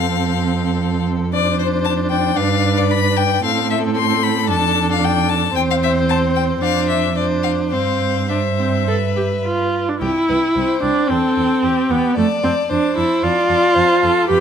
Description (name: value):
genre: quick classical-period movement for string quartet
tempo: 112 BPM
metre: 4/4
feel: rubato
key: C major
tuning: A4 = 442 Hz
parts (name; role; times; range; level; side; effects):
- clear violin; melody; 0.0-14.4 s; C5 to C6; -22 LUFS; left 11 dB; none
- rich violin; second line; 0.0-14.4 s; G4 to D5; -23 LUFS; left 3 dB; none
- rich viola; accompaniment; 0.0-14.4 s; A3 to A4; -18 LUFS; right 1 dB; none
- rich cello; bass; 0.0-14.4 s; C2 to A2; -21 LUFS; right 5 dB; none
room: moderate recital hall reverb, RT60 1.4 s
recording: none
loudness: -15 LUFS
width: side -8 dB against mid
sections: 0.0-10.0 A section; 10.0-14.4 B section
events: none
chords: 0.0 F; 1.3 Dm7/F; 2.4 G; 3.4 Am; 4.5 Dm/F; 5.6 C/E; 6.6 Dm7/F; 7.7 C/G; 8.9 G; 10.0 C; 11.1 C/E; 12.2 F